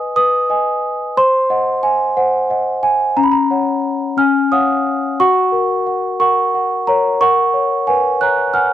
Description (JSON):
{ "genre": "classical, lullaby for celesta", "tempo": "60 BPM (dotted quarters)", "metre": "6/8", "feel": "straight", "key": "F# major", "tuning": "A4 = 440 Hz", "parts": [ { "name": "celesta", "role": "solo", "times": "0.0-8.7 s", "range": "C#4 to F#6", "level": "-13 LUFS", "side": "equal", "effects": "none" } ], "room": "little or no reverb", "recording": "dry, close 1970s-style studio recording", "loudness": "-13 LUFS", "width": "side -11 dB against mid", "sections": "0.0-5.2 A section; 5.2-8.7 B section", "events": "none", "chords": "0.0 G#m/B; 1.2 Cdim; 3.2 F#/C#; 4.2 C#; 5.2 F#; 7.2 F#/A#" }